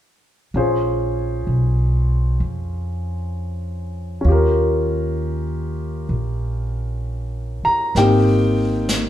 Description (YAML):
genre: jazz ballad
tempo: 65 BPM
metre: 4/4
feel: swing 66% on 8ths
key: unclear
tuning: A4 = 440 Hz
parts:
  - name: upright bass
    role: bass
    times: 0.5-9.1 s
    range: Ab1 to F2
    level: -20 LUFS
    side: equal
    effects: none
  - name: warm concert grand piano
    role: accompaniment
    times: 0.6-9.1 s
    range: Bb3 to Bb5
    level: -21 LUFS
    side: equal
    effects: none
  - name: jazz brush drum kit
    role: drums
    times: 8.0-9.1 s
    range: brushed snare drum, hi-hat, snare drum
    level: -25 LUFS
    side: left 1 dB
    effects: none
room: moderate large studio reverb, RT60 0.9 s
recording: band playing live in one room, tape saturation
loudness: -18 LUFS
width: side -12 dB against mid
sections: 0.6-8.0 A section; 8.0-9.1 B section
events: none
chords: 0.6 Bbm9; 4.3 Eb7; 8.0 Abmaj9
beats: | 0.55 1.48 2.40 3.33 | 4.26 5.18 6.11 7.04 | 7.96 8.89